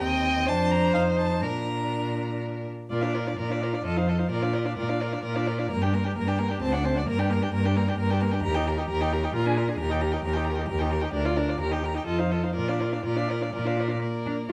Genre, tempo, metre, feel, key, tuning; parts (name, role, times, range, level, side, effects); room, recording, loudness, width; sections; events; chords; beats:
quick classical-period movement for string quartet; 120-135 BPM; 3/4; rubato; Bb major; A4 = 440 Hz
warm violin; melody; 0.0-14.5 s; D5 to Bb5; -36 LUFS; equal
warm violin; second line; 0.0-14.5 s; G4 to Eb5; -34 LUFS; equal
warm viola; accompaniment; 0.0-14.5 s; Bb3 to G4; -33 LUFS; equal
rich cello; bass; 0.0-14.5 s; D2 to F4; -30 LUFS; equal
moderate recital hall reverb, RT60 1.6 s; close, detailed microphones; -26 LUFS; mono
0.0-2.9 A section; 2.9-14.0 B section
0.0 Cm/Eb; 0.5 Bb/F; 0.9 F7; 1.4 Bb; 3.9 F7; 4.3 Bb; 5.7 Gm; 6.6 D7; 7.1 Gm; 8.4 Eb; 9.3 Bb7; 9.8 Eb; 11.1 Bb/D; 11.6 Eb; 12.1 F7; 12.6 Bb
| 0.02 0.48 0.94 | 1.43 1.92 2.42 | 2.91 3.38 3.85 | 4.32 4.78 5.24 | 5.71 6.17 6.63 | 7.09 7.54 7.99 | 8.44 8.90 9.35 | 9.80 10.25 10.69 | 11.14 11.60 12.07 | 12.56 13.05 13.55 | 14.03 14.49